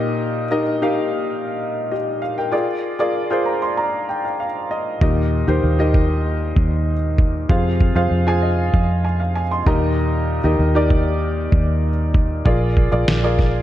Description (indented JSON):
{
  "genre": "piano-driven pop",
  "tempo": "97 BPM",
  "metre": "4/4",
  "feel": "straight",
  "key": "Eb major",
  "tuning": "A4 = 440 Hz",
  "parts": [
    { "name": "warm upright piano", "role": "accompaniment", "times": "0.0-13.6 s", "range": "Bb2 to C6", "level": "-20 LUFS", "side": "left 1 dB", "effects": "none" },
    { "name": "vintage muted fingered electric bass", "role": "bass", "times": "5.0-13.6 s", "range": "Bb1 to F2", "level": "-19 LUFS", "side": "equal", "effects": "none" },
    { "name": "lo-fi sampler-style drum kit", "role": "drums", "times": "5.0-13.5 s", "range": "kick drum, snare drum", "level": "-17 LUFS", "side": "equal", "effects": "none" }
  ],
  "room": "light reverb, digital ambience",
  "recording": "none",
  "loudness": "-17 LUFS",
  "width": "side -12 dB against mid",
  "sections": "0.0-13.6 A section",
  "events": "upright piano fill 3.2-5.0, 8.1-10.0",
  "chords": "0.0 Eb; 2.5 Bb7; 5.0 Eb; 7.5 Fm; 9.7 Eb; 12.5 Bb7"
}